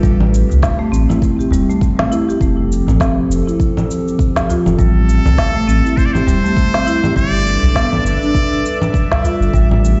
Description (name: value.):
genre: organic downtempo.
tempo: 101 BPM.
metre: 4/4.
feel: swing 58% on 16ths.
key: A minor.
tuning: A4 = 440 Hz.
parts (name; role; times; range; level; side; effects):
warbly tape-like pad; sustained chords; 0.0-10.0 s; F3 to B4; -25 LUFS; equal; chorus, built-in reverb, sidechain pumping.
marimba with medium mallets; arpeggios; 0.0-9.7 s; G3 to G4; -21 LUFS; equal; tape echo.
warm sub bass; bass; 0.0-9.9 s; E1 to C2; -16 LUFS; equal; tube saturation.
electronic kick drum; drums; 0.0-9.7 s; none; -19 LUFS; equal; none.
electronic shaker, congas and snare drum; drums; 0.0-10.0 s; none; -23 LUFS; equal; none.
udu; percussion; 0.5-9.4 s; none; -22 LUFS; equal; none.
trumpet with straight mute; melody; 4.8-9.2 s; A4 to D5; -24 LUFS; equal; digital delay.
drifting glass-harmonics texture; texture; 5.7-10.0 s; E5; -31 LUFS; equal; chorus, built-in reverb.
room: light reverb.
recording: played on a big sound system in a bare room, large studio reverb, nothing above 7.9 kHz.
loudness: -15 LUFS.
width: mono.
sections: 0.0-10.0 A section.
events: none.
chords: 0.0 Am7; 2.4 F; 4.8 Am7; 7.2 G.